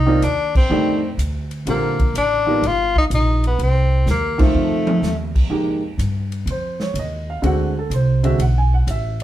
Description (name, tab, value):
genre	jazz, small-group swing and bop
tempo	125 BPM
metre	4/4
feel	swing 68% on 8ths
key	unclear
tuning	A4 = 439 Hz
part	bright tenor saxophone	melody	0.0-5.3 s	A3 to F4	-20 LUFS	left 3 dB	none
part	upright bass	bass	0.0-9.2 s	G1 to G2	-20 LUFS	right 1 dB	none
part	clear baby grand piano	accompaniment	0.1-9.2 s	D3 to G#5	-21 LUFS	right 1 dB	none
part	swinging big-band drum kit	drums	0.2-9.2 s	crash cymbal, hi-hat, kick drum, ride cymbal, snare drum, toms	-21 LUFS	equal	none
room	wet small room ambience, RT60 0.5 s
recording	heard from further back in the room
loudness	-16 LUFS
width	side -13 dB against mid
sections	0.0-5.5 A section; 5.5-9.2 B section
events	band accent 0.5, 4.3; drum fill 4.1-5.0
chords	0.0 Cm11; 0.7 F13; 1.7 Bb69; 2.6 Gm7b13; 3.6 F7/C; 4.5 F7; 5.5 Fm11; 7.4 D7#11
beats	0.22 0.70 1.18 | 1.66 2.15 2.63 3.11 | 3.59 4.07 4.55 5.03 | 5.51 5.99 6.47 6.95 | 7.43 7.92 8.40 8.88